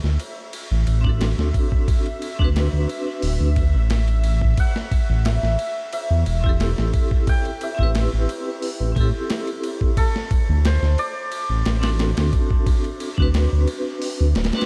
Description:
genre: trip hop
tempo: 89 BPM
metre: 4/4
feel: straight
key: unclear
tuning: A4 = 442 Hz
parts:
  - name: dark detuned saw bass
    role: bass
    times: 0.0-14.5 s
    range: D1 to A2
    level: -21 LUFS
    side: equal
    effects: none
  - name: dusty soul sampler-style drum kit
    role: drums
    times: 0.0-14.7 s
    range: hi-hat, kick drum, ride cymbal, snare drum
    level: -25 LUFS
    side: equal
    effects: overdrive, studio reverb
  - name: bowed-like drone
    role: texture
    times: 0.0-14.7 s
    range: E5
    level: -41 LUFS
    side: equal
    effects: built-in reverb
  - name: vibraphone with hard mallets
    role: accompaniment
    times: 1.0-14.7 s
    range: C4 to B4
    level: -30 LUFS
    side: equal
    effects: tremolo, tape echo
  - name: santur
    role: melody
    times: 4.6-14.7 s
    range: A4 to G5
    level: -32 LUFS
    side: equal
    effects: dub echo
room: digital ambience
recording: dark, warm production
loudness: -21 LUFS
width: mono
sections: 0.0-14.7 A section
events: kick drops out 14.0-14.7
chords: 0.0 D7; 4.6 Am7; 10.0 D7

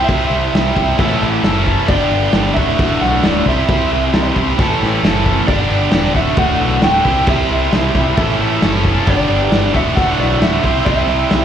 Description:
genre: classic rock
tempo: 134 BPM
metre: 4/4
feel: straight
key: D major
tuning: A4 = 440 Hz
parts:
  - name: electric slide guitar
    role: melody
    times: 0.0-11.4 s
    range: D5 to G5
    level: -19 LUFS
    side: right 1 dB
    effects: slapback echo
  - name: raw garage guitar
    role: riff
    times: 0.0-11.4 s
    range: D2 to C5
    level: -20 LUFS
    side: left 12 dB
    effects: overdrive
  - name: tight distorted guitar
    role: riff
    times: 0.0-11.4 s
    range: D2 to C5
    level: -18 LUFS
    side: right 10 dB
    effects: distortion, slapback echo
  - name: picked electric bass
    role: bass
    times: 0.0-11.4 s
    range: D1 to C2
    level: -19 LUFS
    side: equal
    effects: none
  - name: vintage drum kit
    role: drums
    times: 0.1-11.4 s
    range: crash cymbal, kick drum, snare drum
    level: -18 LUFS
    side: equal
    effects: none
  - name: octave-fuzz lead guitar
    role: second line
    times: 1.0-5.4 s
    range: E4 to C5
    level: -26 LUFS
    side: left 3 dB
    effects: distortion, slapback echo
room: light reverb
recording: live gig heard through the venue's PA, club reverb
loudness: -12 LUFS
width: side -9 dB against mid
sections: 0.0-11.4 A section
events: none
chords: 0.0 C; 1.0 A; 1.9 G; 2.6 D; 3.5 C; 4.6 A; 5.5 G; 6.2 D; 7.1 C; 8.2 A; 9.1 G; 9.7 D; 10.6 C

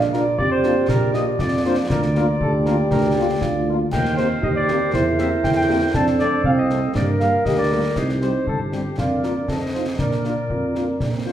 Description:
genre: military-style march for wind band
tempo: 119 BPM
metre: 2/4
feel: straight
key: Bb major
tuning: A4 = 441 Hz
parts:
  - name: warm euphonium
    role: second line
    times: 0.0-11.3 s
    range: Bb3 to G4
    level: -24 LUFS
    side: right 3 dB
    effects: none
  - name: warm woodwind section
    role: second line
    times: 0.0-11.3 s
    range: F4 to Eb5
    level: -26 LUFS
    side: left 1 dB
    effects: none
  - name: dark tuba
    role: bass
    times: 0.0-11.3 s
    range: G1 to Bb2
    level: -22 LUFS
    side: right 1 dB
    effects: none
  - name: concert snare drum, concert bass drum and clash cymbals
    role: drums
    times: 0.0-11.3 s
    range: none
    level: -27 LUFS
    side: left 2 dB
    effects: none
  - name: dark cornet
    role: melody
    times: 0.1-11.3 s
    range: F4 to A5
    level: -25 LUFS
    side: right 1 dB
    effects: none
  - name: warm French horn section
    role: accompaniment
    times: 0.1-11.3 s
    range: G3 to Bb4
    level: -29 LUFS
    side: left 3 dB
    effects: none
room: wet large studio reverb, RT60 1.3 s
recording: heard from further back in the room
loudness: -17 LUFS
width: side -11 dB against mid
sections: 0.0-11.3 A section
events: none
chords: 0.0 Bb; 1.9 Bb/D; 3.9 Cm7/Eb; 4.9 C7/E; 5.9 F; 7.0 Gm; 8.0 Cm; 9.0 Bb/F; 9.5 F7; 10.0 Bb

